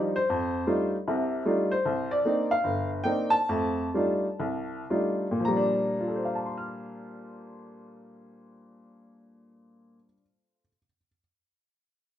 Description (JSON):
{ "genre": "solo jazz", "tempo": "107-154 BPM", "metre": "4/4", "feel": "swing 66% on 8ths", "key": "Bb major", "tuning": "A4 = 437 Hz", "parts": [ { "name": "warm upright piano", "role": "solo", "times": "0.0-11.2 s", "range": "G1 to F6", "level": "-25 LUFS", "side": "equal", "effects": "none" } ], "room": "moderate club reverb, RT60 0.8 s", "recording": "minimal, uncompressed stereo recording", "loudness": "-25 LUFS", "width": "side -11 dB against mid", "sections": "0.0-5.4 A section; 5.4-9.9 B section", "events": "slowing down 1.9-5.4", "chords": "0.3 F13; 1.9 Cm9; 3.5 F13; 5.4 Bb6" }